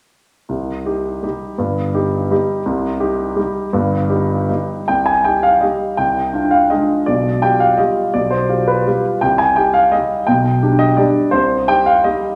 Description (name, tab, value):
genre	classical, piano waltz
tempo	145-180 BPM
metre	3/4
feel	rubato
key	C minor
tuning	A4 = 442 Hz
part	warm grand piano	solo	0.5-12.4 s	G1 to Ab5	-16 LUFS	equal	none
room	wet recital hall reverb, RT60 1.5 s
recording	none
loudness	-16 LUFS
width	mono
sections	0.5-4.9 A section; 4.9-12.4 B section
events	none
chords	0.5 Cm; 6.0 Dm7b5/C; 7.1 G7/B; 9.2 Cm; 10.3 G/B; 11.3 Cm